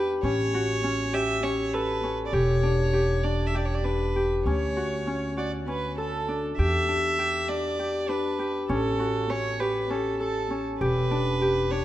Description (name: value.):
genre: contemporary instrumental, contemporary.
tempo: 199 BPM (eighths).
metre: 7/8.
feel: straight.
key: E dorian.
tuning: A4 = 440 Hz.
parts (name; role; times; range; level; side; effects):
rich violin; melody; 0.0-11.8 s; A4 to E5; -30 LUFS; right 3 dB; none.
Celtic harp; arpeggios; 0.0-11.8 s; C#4 to A4; -27 LUFS; left 2 dB; none.
upright bass; bass; 0.0-11.8 s; E1 to E2; -29 LUFS; equal; none.
room: moderate concert hall reverb, RT60 1.8 s.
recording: none.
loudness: -24 LUFS.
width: side -14 dB against mid.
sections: 0.0-11.8 A section.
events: none.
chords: 0.2 A7; 2.3 Em7; 4.5 Dmaj7; 6.6 Em7; 8.7 A7; 10.8 Em7.